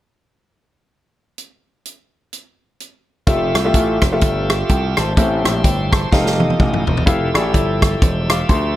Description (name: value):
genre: uptempo gospel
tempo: 126 BPM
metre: 4/4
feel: swing 59% on 8ths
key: F major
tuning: A4 = 440 Hz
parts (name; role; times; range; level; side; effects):
- natural country drum kit; drums; 1.4-8.6 s; hi-hat, kick drum, rim click, snare drum, toms; -17 LUFS; equal; none
- clear grand piano; accompaniment; 3.3-8.8 s; A2 to D6; -20 LUFS; left 2 dB; none
- bright tonewheel organ; sustained chords; 3.3-8.8 s; F3 to E5; -25 LUFS; right 3 dB; fast rotary speaker, overdrive
- gritty slap bass; bass; 3.3-8.7 s; E1 to D2; -20 LUFS; equal; overdrive
room: light reverb, small room ambience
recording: none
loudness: -14 LUFS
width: side -14 dB against mid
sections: 1.4-3.3 A section; 3.3-7.1 B section; 7.1-8.8 C section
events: drum fill 6.1-7.1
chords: 1.4 N.C.; 3.3 Fmaj9; 5.2 Am7; 6.1 F9; 7.1 Fmaj9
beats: | 1.38 1.85 2.33 2.80 | 3.27 3.75 4.22 4.70 | 5.17 5.65 6.12 6.59 | 7.07 7.54 8.02 8.49